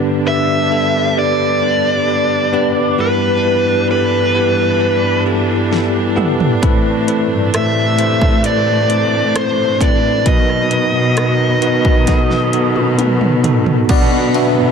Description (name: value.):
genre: pop ballad.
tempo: 66 BPM.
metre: 4/4.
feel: straight.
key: E minor.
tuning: A4 = 440 Hz.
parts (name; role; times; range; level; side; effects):
bell-like tine electric piano; accompaniment; 0.0-14.7 s; G2 to E5; -16 LUFS; left 1 dB; fast stereo tremolo.
clear studio string section; sustained chords; 0.0-14.7 s; G2 to D4; -22 LUFS; right 1 dB; none.
bluesy overdriven lead guitar; melody; 0.3-13.0 s; B4 to E5; -16 LUFS; equal; distortion.
pop drum kit; drums; 5.7-14.6 s; crash cymbal, hi-hat, kick drum, ride cymbal, rim click, snare drum, toms; -17 LUFS; right 1 dB; none.
rich chamber cello section; bass; 6.6-14.7 s; G2 to B2; -18 LUFS; equal; none.
room: light reverb, digital ambience.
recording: none.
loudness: -12 LUFS.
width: side -6 dB against mid.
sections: 0.0-13.9 A section.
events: drum fill 5.7-6.6, 12.1-13.9.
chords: 0.0 G; 3.0 Em/G; 6.6 Amadd9; 10.3 B; 13.9 Bm.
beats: 0.26 1.17 2.08 | 2.99 3.90 4.80 5.71 | 6.62 7.53 8.44 9.35 | 10.26 11.17 12.08 12.99 | 13.90.